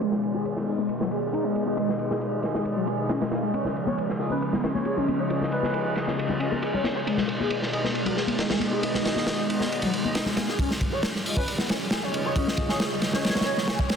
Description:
breakbeat, breaks; 136 BPM; 4/4; straight; A4 = 439 Hz
phased analog pad; sustained chords; 0.0-14.0 s; B2 to G#4; -30 LUFS; equal; phaser, chorus, sidechain pumping
overdriven synth lead; riff; 0.0-14.0 s; F#3 to C#5; -30 LUFS; left 1 dB; phaser, tube saturation, ensemble chorus, cassette tape, ping-pong delay
crunchy breakbeat drum kit; drums; 0.0-14.0 s; hi-hat, kick drum, ride cymbal, snare drum; -28 LUFS; equal; high-pass filter on kick, high-pass filter on cymbals, high-pass filter on hats, high-pass filter on snare, high-pass filter on room
warm brass ensemble; stabs; 0.7-13.6 s; D#4 to E#5; -34 LUFS; left 2 dB; vintage 12-bit sampler grit, low-pass filter, ping-pong delay
congas and bongos; percussion; 3.6-10.5 s; -32 LUFS; left 4 dB
airy dreamy lead; melody; 4.3-6.0, 11.4-13.7 s; G#4 to C#5; -35 LUFS; equal; chorus, telephone sound, ping-pong delay
moderate digital room reverb, RT60 1.1 s, studio reverb; dense, heavily limited modern master, low-pass filter; -23 LUFS; side -6 dB against mid
0.0-10.6 A section; 10.6-14.0 B section
filter sweep 0.0-10.6; build-up 10.6-14.0
0.0 G#m; 3.5 C#add9; 7.1 G#m; 10.6 C#add9
| 0.01 0.45 0.89 1.33 | 1.77 2.21 2.65 3.09 | 3.54 3.98 4.42 4.86 | 5.30 5.74 6.18 6.62 | 7.07 7.51 7.95 8.39 | 8.83 9.27 9.71 10.15 | 10.59 11.04 11.48 11.92 | 12.36 12.80 13.24 13.68

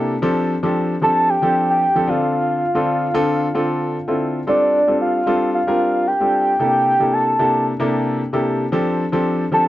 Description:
funk; 113 BPM; 4/4; straight; A4 = 440 Hz
warm grand piano; accompaniment; 0.0-9.7 s; C3 to Bb4; -19 LUFS; left 1 dB
soft octave-layered synth lead; melody; 1.0-9.7 s; D5 to A5; -17 LUFS; equal; chorus, tremolo, slapback echo
light reverb; dry, close 1970s-style studio recording; -16 LUFS; side -14 dB against mid
0.0-9.7 A section
0.2 F69; 2.1 Dm7; 4.5 G7sus4; 6.6 C13; 8.7 F69
| 0.23 0.76 1.29 1.82 | 2.35 2.88 3.41 3.94 | 4.47 5.00 5.54 6.07 | 6.60 7.13 7.66 8.19 | 8.72 9.25

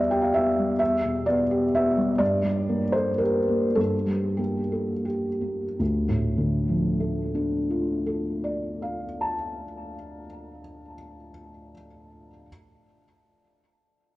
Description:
neoclassical minimalist piano; 79-130 BPM; 3/4; rubato; D minor; A4 = 440 Hz
felt-muted upright piano; solo; 0.0-12.5 s; D2 to A5; -23 LUFS; equal; tape echo
wet recital hall reverb, RT60 1.6 s; worn, warbling old tape, cassette tape, warbly pitch drift; -22 LUFS; side -17 dB against mid
0.0-5.8 A section; 5.8-10.3 B section
slowing down 1.5-5.8
0.0 Em; 2.2 Gmadd9; 5.8 Dm
0.32 | 0.80 1.27 1.73 | 2.20 2.69 3.21 | 3.78 4.40 5.06 | 5.78 6.53 7.28 | 8.03 8.78 9.52

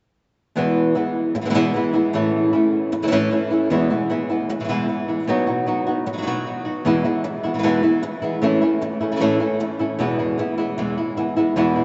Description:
flamenco; 153 BPM; 4/4; straight; E major; A4 = 439 Hz
flamenco guitar; melody; 0.6-11.8 s; E2 to F#4; -22 LUFS; equal
flamenco guitar; stabs; 0.6-11.8 s; E2 to F#4; -26 LUFS; equal
wet cathedral reverb, RT60 5.7 s; in a vast, echoing space, nothing above 7.9 kHz; -21 LUFS; mono
0.6-11.8 A section
0.6 E; 2.1 A; 3.7 E; 5.3 B; 6.9 E; 8.4 A; 10.0 E
| 0.57 0.96 1.35 1.75 | 2.14 2.53 2.93 3.32 | 3.71 4.11 4.50 4.89 | 5.28 5.68 6.07 6.46 | 6.86 7.25 7.64 8.03 | 8.43 8.82 9.21 9.60 | 10.00 10.39 10.78 11.17 | 11.57

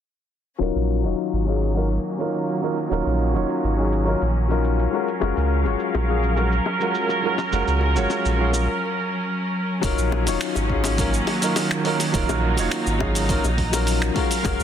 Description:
sunset chillout; 104 BPM; 4/4; straight; Eb minor; A4 = 439 Hz
warm baby grand piano; accompaniment; 0.6-14.6 s; Gb3 to Db5; -24 LUFS; moving between left 11 dB and right 5 dB; auto-pan, low-pass filter, ping-pong delay
muted studio string section; sustained chords; 0.6-14.6 s; Eb3 to F5; -26 LUFS; right 1 dB
warm sub bass; bass; 0.6-14.6 s; Eb1 to Db2; -22 LUFS; right 1 dB
dusty soul sampler-style drum kit; drums; 0.6-14.6 s; finger snaps, hi-hat, shaker; -29 LUFS; right 1 dB; low-pass filter on perc, low-pass filter on hats, soft clipping on snare, low-pass filter on snare
bongos; percussion; 5.2-14.6 s; -31 LUFS; left 6 dB
electronic kick drum; drums; 9.8-14.6 s; -26 LUFS; right 1 dB
light reverb; dense, heavily limited modern master, low-pass filter; -20 LUFS; side -9 dB against mid
0.6-9.8 A section; 9.8-14.6 B section
filter sweep on drum 0.6-9.8; filter sweep on sub bass 0.6-9.8; filter sweep on grand piano 0.6-9.8; filter sweep 0.6-9.8; break 8.7-9.8
0.6 Ebm7; 4.9 Gbmaj7; 9.8 Ebm7
| 0.60 1.18 1.75 2.33 | 2.91 3.48 4.06 4.64 | 5.22 5.79 6.37 6.95 | 7.52 8.10 8.68 9.25 | 9.83 10.41 10.98 11.56 | 12.14 12.72 13.29 13.87 | 14.45

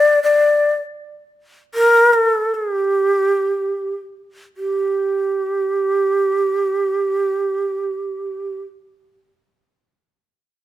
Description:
japanese traditional; free time; G minor; A4 = 440 Hz
breathy mellow shakuhachi; melody; 0.0-8.6 s; G4 to D5; -16 LUFS; equal
light reverb; close, detailed microphones; -16 LUFS; side -13 dB against mid
0.0-4.6 A section; 4.6-9.3 B section
slowing down 1.0-4.6
free time

